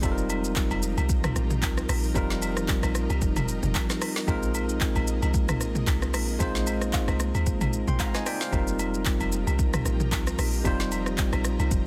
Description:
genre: amapiano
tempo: 113 BPM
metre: 4/4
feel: swing 55% on 16ths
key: F minor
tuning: A4 = 440 Hz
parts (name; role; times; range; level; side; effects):
- bell-like tine electric piano; accompaniment; 0.0-11.9 s; G3 to C6; -32 LUFS; equal; none
- ethereal airy pad; sustained chords; 0.0-11.9 s; F3 to Bb4; -39 LUFS; equal; ensemble chorus, built-in reverb
- deep log drum bass; bass; 0.0-11.9 s; F1 to Eb2; -31 LUFS; equal; none
- deep house drum kit; drums; 0.0-11.8 s; handclaps, hi-hat, kick drum, rim click, shaker, snare drum, toms; -30 LUFS; equal; none
- agogo bells and woodblock; percussion; 0.0-11.7 s; none; -40 LUFS; equal; none
room: digital ambience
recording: dense, heavily limited modern master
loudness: -26 LUFS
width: mono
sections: 0.0-11.9 A section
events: none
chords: 0.0 F9sus4; 4.3 Bb9sus4; 8.5 F9sus4

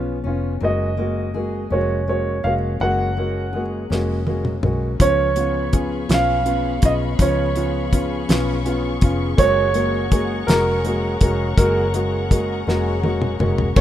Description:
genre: six-eight pop ballad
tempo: 55 BPM (dotted quarters)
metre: 6/8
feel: straight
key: unclear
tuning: A4 = 439 Hz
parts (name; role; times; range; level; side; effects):
- warm upright piano; accompaniment; 0.0-13.8 s; Ab3 to Gb4; -24 LUFS; equal; none
- fingerpicked steel-string acoustic guitar; arpeggios; 0.0-13.8 s; F3 to Ab4; -29 LUFS; left 7 dB; digital delay
- vintage muted fingered electric bass; bass; 0.0-13.8 s; F1 to Db2; -24 LUFS; equal; none
- clear concert grand piano; melody; 0.6-13.8 s; Bb4 to Gb5; -22 LUFS; right 3 dB; none
- damped 70s drum kit; drums; 3.9-13.8 s; crash cymbal, hi-hat, kick drum, snare drum, toms; -18 LUFS; equal; none
- warm studio string section; sustained chords; 5.0-13.8 s; Gb4 to Db6; -31 LUFS; left 2 dB; none
room: light reverb, small room reverb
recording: rough home demo mix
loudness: -17 LUFS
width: side -11 dB against mid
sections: 0.0-13.8 A section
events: drum fill 3.9-5.0, 12.7-13.8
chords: 0.0 Db7; 0.6 Gbadd9; 5.0 Db7; 9.4 Gbadd9

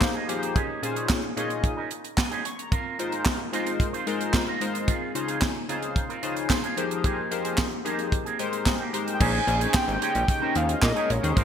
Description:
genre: early-eighties boogie funk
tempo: 111 BPM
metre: 4/4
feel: straight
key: Bb dorian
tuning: A4 = 440 Hz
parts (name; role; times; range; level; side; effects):
- chorused polysynth; accompaniment; 0.0-11.4 s; Bb2 to Db6; -29 LUFS; left 4 dB; none
- electric guitar with an envelope filter; riff; 0.0-11.4 s; Bb3 to C5; -34 LUFS; right 5 dB; lush chorus
- tight funk drum kit; drums; 0.0-11.4 s; crash cymbal, handclaps, hi-hat, kick drum, snare drum; -26 LUFS; right 1 dB; gated reverb
- group handclap; percussion; 0.0-11.0 s; none; barely audible; none; none
- fat analog lead; melody; 9.1-11.4 s; C5 to Ab5; -27 LUFS; equal; chorus
- lush unison pad; sustained chords; 9.2-11.4 s; Db3 to F4; -34 LUFS; equal; chorus
- plucky analog bass; bass; 9.2-11.4 s; Ab1 to Bb2; -26 LUFS; equal; none
room: moderate plate reverb, RT60 1.8 s, small room ambience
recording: bright 1980s-style digital production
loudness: -23 LUFS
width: side -8 dB against mid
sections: 0.0-9.2 A section; 9.2-11.4 B section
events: none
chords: 0.0 Fm11; 0.6 Bbm11; 2.7 Ab69; 4.9 Dbmaj7; 6.8 Fm11; 8.1 Abmaj9; 9.2 Bbm11

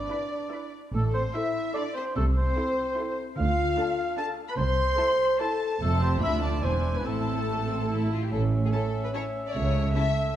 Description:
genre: cinematic, playful, whimsical film cue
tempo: 147 BPM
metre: 3/4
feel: straight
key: A minor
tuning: A4 = 439 Hz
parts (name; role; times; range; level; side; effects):
- dark cor anglais; second line; 0.0-10.4 s; A4 to A5; -31 LUFS; right 1 dB; none
- rich studio violin section; second line; 0.0-10.3 s; F4 to C6; -34 LUFS; left 3 dB; none
- warm French horn section; sustained chords; 0.0-10.1 s; A3 to C5; -32 LUFS; left 2 dB; none
- clear studio double bass section; bass; 0.0-9.9 s; E1 to D2; -28 LUFS; right 2 dB; none
- rich studio cello section; bass; 0.0-9.9 s; D2 to D3; -31 LUFS; right 2 dB; none
- rich studio violin section; melody; 0.1-10.0 s; G#5 to C6; -40 LUFS; left 4 dB; none
- warm studio viola section; accompaniment; 0.1-10.0 s; A3 to B4; -36 LUFS; right 1 dB; none
- mellow bassoon; accompaniment; 8.3-10.4 s; A3 to C#4; -34 LUFS; equal; none
- warm tuba; bass; 8.3-9.9 s; A1 to C#2; -34 LUFS; right 2 dB; none
room: moderate scoring stage reverb, RT60 1.7 s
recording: none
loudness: -24 LUFS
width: side -11 dB against mid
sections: 0.0-8.3 A section; 8.3-10.4 B section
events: none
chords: 0.0 E7(no3); 0.9 Am; 2.2 Am/C; 3.4 Dm; 4.6 Am/C; 5.8 F; 6.2 Bdim/D; 6.6 E7; 7.1 Am; 8.3 A; 9.6 A/C#

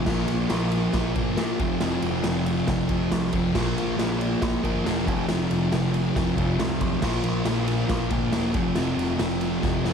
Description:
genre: garage rock duo or trio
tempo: 138 BPM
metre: 4/4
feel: straight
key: unclear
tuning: A4 = 440 Hz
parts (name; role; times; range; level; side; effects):
- thick fuzz guitar; riff; 0.0-9.9 s; F2 to Bb3; -24 LUFS; equal; distortion
- growling picked electric bass; bass; 0.0-9.9 s; E1 to Bb2; -31 LUFS; equal; overdrive
- raw garage drum kit; drums; 0.1-9.9 s; crash cymbal, kick drum, ride cymbal, snare drum; -28 LUFS; equal; none
room: light reverb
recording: none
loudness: -22 LUFS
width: side -7 dB against mid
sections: 0.0-9.9 A section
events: drum fill 9.6-9.9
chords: 0.1 Bb5; 1.6 F5; 3.5 Bb5; 5.1 F5; 7.0 Bb5; 8.5 F5

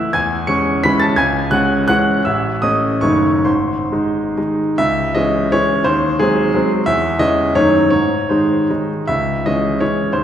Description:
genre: classical, romantic triple-time dance for piano with dotted rhythms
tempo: 129-191 BPM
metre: 3/4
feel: rubato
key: C# minor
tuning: A4 = 440 Hz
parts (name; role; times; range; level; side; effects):
- bright grand piano; solo; 0.0-10.2 s; F#1 to C#7; -14 LUFS; equal; none
room: wet concert hall reverb, RT60 2.1 s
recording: heard from further back in the room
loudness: -14 LUFS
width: side -9 dB against mid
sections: 0.0-4.8 A section; 4.8-10.2 B section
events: none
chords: 0.1 C#m/E; 1.2 C#m; 2.2 A; 3.0 D#m7b5/F#; 3.5 G#; 4.8 C#m; 5.8 G#7/D#; 6.9 C#m/E; 7.6 D#m7b5/F#; 7.9 G#; 9.1 C#m

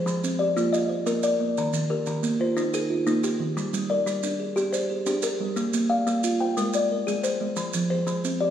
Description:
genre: southern african traditional, mbira-style interlocking cycle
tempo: 120 BPM (dotted quarters)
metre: 12/8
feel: straight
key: Bb mixolydian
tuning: A4 = 440 Hz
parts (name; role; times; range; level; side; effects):
- kalimba; arpeggios; 0.0-8.5 s; Eb3 to G5; -25 LUFS; left 3 dB; none
- kalimba; arpeggios; 0.0-8.5 s; Eb3 to F5; -27 LUFS; right 4 dB; none
- maracas; percussion; 0.1-8.4 s; none; -35 LUFS; right 6 dB; none
room: wet recital hall reverb, RT60 1.5 s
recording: recorded in a church or concert hall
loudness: -23 LUFS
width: side -10 dB against mid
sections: 0.0-8.5 A section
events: none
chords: 0.0 Fm; 0.6 Bb; 1.6 Eb; 3.6 Gm; 5.6 Bb; 6.6 Ab; 7.6 Fm

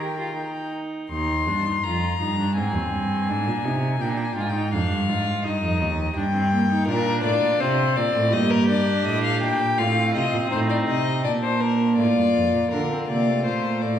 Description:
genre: classical, baroque-style fugue for string quartet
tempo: 82 BPM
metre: 4/4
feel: straight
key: Eb major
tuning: A4 = 441 Hz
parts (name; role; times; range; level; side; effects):
- rich violin; melody; 0.0-14.0 s; Bb4 to C6; -25 LUFS; left 6 dB; none
- dark violin; second line; 0.0-0.7, 6.9-14.0 s; D4 to Bb4; -29 LUFS; left 1 dB; none
- rich viola; accompaniment; 0.0-14.0 s; A3 to G4; -26 LUFS; right 2 dB; none
- rich cello; bass; 0.0-14.0 s; Eb2 to Eb3; -25 LUFS; right 2 dB; none
room: wet recital hall reverb, RT60 1.5 s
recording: heard from further back in the room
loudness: -20 LUFS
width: side -9 dB against mid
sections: 0.0-1.1 A section; 1.1-12.7 B section; 12.7-14.0 A section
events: none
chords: 0.0 Eb; 2.6 Ab; 4.0 Bb7; 5.4 Eb; 6.9 Bb; 8.3 Eb/G; 9.8 F7/A; 11.2 Bb

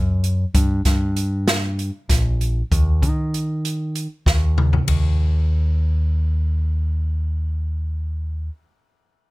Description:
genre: progressive instrumental, band music in an uneven meter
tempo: 194 BPM (eighths)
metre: 7/8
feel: straight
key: unclear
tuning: A4 = 439 Hz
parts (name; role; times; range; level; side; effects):
- picked electric bass; bass; 0.0-8.5 s; Bb1 to Eb3; -19 LUFS; equal; none
- open jazz drum kit; drums; 0.2-5.0 s; hi-hat, kick drum, ride cymbal, snare drum, toms; -20 LUFS; equal; none
room: little or no reverb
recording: none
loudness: -18 LUFS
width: side -20 dB against mid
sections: 0.0-4.9 A section; 4.9-9.2 B section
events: drum fill 4.3-4.9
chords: none

